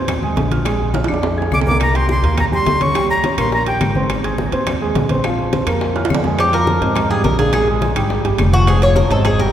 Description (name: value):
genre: latin, salsa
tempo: 210 BPM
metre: 4/4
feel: straight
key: unclear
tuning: A4 = 440 Hz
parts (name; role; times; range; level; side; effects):
- dark concert grand piano; accompaniment; 0.0-9.5 s; F3 to Ab6; -21 LUFS; right 2 dB; none
- upright bass; bass; 0.0-9.5 s; F1 to Ab2; -19 LUFS; equal; none
- bongos; percussion; 0.1-9.5 s; none; -26 LUFS; left 3 dB; none
- claves; percussion; 0.1-9.4 s; none; -33 LUFS; left 4 dB; none
- congas; percussion; 0.1-9.5 s; none; -24 LUFS; left 1 dB; none
- timbales; percussion; 0.1-9.4 s; none; -26 LUFS; right 4 dB; none
- breathy bright jazz flute; melody; 1.5-3.9 s; G5 to D6; -20 LUFS; left 1 dB; none
- Cuban tres; melody; 6.4-9.5 s; Gb4 to Db5; -17 LUFS; equal; none
room: wet church reverb, RT60 3.5 s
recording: recorded in a church or concert hall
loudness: -14 LUFS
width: side -10 dB against mid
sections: 0.0-6.4 A section; 6.4-9.5 B section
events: drum fill 0.9-1.8, 6.0-6.4; Cuban tres solo 6.4-9.5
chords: 0.0 Abadd9; 0.7 Bb7; 1.8 Cm7; 3.0 Eb7; 4.1 Ab; 5.2 Bbsus2; 6.4 Fm7; 7.0 Abmaj7; 7.5 Absus2; 8.1 Fmadd9; 8.7 Fm7